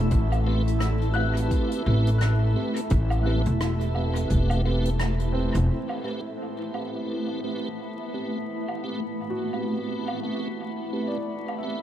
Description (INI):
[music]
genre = ambient dub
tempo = 86 BPM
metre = 4/4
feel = swing 58% on 16ths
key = A dorian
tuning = A4 = 439 Hz
[part]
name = granular cloud pad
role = sustained chords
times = 0.0-11.8 s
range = A3 to A5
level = -31 LUFS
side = equal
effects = built-in reverb
[part]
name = felt-muted upright piano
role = arpeggios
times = 0.0-11.8 s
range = C4 to F#6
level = -37 LUFS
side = left 1 dB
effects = low-pass filter, tape echo
[part]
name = upright bass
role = bass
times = 0.0-5.7 s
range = E1 to A1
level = -23 LUFS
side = equal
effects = none
[part]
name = electronic kick drum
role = drums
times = 0.1-4.5 s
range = none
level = -26 LUFS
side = equal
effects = none
[part]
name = soft brush drum kit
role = drums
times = 0.1-11.6 s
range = hi-hat, rim click, woodblock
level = -36 LUFS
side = equal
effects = dub echo
[part]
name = tonewheel organ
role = stabs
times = 0.5-11.8 s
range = A3 to B4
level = -32 LUFS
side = right 2 dB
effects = chorus vibrato, slow rotary speaker, dub echo
[part]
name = drifting glass-harmonics texture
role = texture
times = 6.6-11.8 s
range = B3 to B5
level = -38 LUFS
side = right 1 dB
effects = chorus, built-in reverb
[sound]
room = small room reverb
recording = echo-heavy mix, vinyl crackle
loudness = -24 LUFS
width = side -11 dB against mid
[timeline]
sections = 0.0-5.7 A section; 5.7-11.8 B section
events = filter sweep on felt piano 5.7-11.8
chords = 0.0 Am9